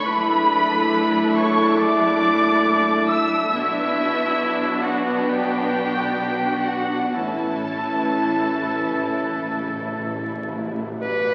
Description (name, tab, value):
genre	cinematic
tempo	60-70 BPM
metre	4/4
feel	rubato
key	unclear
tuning	A4 = 440 Hz
part	rich studio violin section	melody	0.0-11.3 s	E5 to E6	-28 LUFS	equal	none
part	clear oboe	second line	0.0-10.5 s	E4 to E5	-30 LUFS	equal	none
part	mellow hollow concert flute	second line	0.0-10.5 s	E5 to E6	-28 LUFS	equal	none
part	rich studio violin section	second line	0.0-11.3 s	D4 to D5	-31 LUFS	equal	none
part	warm studio viola section	accompaniment	0.0-10.8 s	E3 to D4	-28 LUFS	equal	none
part	dark studio cello section	bass	0.0-11.3 s	F#2 to B2	-37 LUFS	equal	none
part	rich studio double bass section	bass	0.0-11.3 s	F#1 to B1	-39 LUFS	equal	none
part	dark French horn section	sustained chords	0.1-10.7 s	A3 to E4	-28 LUFS	equal	none
part	timpani	percussion	7.2-11.0 s	A2	-36 LUFS	equal	none
part	rich cello	melody	11.0-11.3 s	B4	-23 LUFS	equal	none
room	wet scoring stage reverb, RT60 2.0 s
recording	very old 78 rpm record, vinyl crackle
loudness	-21 LUFS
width	mono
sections	0.0-11.0 A section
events	timpani fill 7.1-11.0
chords	0.1 Dadd9/F#; 3.5 Bm; 7.1 A